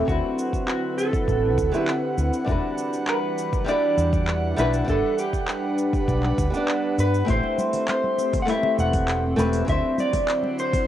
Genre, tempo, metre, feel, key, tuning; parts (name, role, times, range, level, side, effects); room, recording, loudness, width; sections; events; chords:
sunset chillout; 100 BPM; 4/4; straight; A4 = 441 Hz
electric guitar at the edge of break-up; melody; 0.0-10.9 s; F#4 to F#5; -26 LUFS; right 1 dB; lush chorus, cassette tape, tape echo, plate reverb
flamenco guitar; accompaniment; 0.0-10.9 s; F#3 to F#5; -27 LUFS; moving between left 4 dB and right 2 dB; auto-pan, cassette tape, tape echo, plate reverb
airy breathy pad; sustained chords; 0.0-10.9 s; D3 to F#5; -28 LUFS; equal; chorus, cassette tape, plate reverb
woody fretless electric bass; bass; 0.1-9.8 s; E1 to G2; -24 LUFS; equal; tube saturation
electronic kick drum; drums; 0.1-10.9 s; -26 LUFS; equal; studio reverb, cassette tape
smooth R&B drum kit; drums; 0.1-10.9 s; cabasa, handclaps, hi-hat; -31 LUFS; equal; studio reverb, cassette tape
congas; percussion; 7.4-10.9 s; -33 LUFS; left 2 dB
wet booth ambience, RT60 0.2 s; home recording on cassette; -20 LUFS; side -11 dB against mid
0.0-10.9 A section
0.1 D13; 2.5 Em9; 4.9 Gmaj7; 7.3 Am9; 9.7 D9